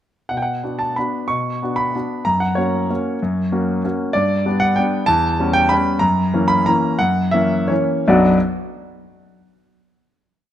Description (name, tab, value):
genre	classical, piano waltz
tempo	145-200 BPM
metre	3/4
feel	rubato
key	B minor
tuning	A4 = 440 Hz
part	clear grand piano	solo	0.3-8.4 s	B1 to C#6	-16 LUFS	equal	none
room	light reverb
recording	close, detailed microphones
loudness	-16 LUFS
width	side -11 dB against mid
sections	0.3-8.1 A section; 8.1-9.2 final chord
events	slowing down 5.6-8.1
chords	0.3 Bm; 2.3 F#; 4.2 G; 5.1 C#m7b5/E; 6.0 F#7; 8.1 Bm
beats	| 0.30 0.63 0.96 | 1.28 1.61 1.94 | 2.26 2.57 2.90 | 3.21 3.52 3.84 | 4.15 4.46 4.77 | 5.08 5.39 5.71 | 6.02 6.34 6.67 | 7.01 7.34 7.70 | 8.09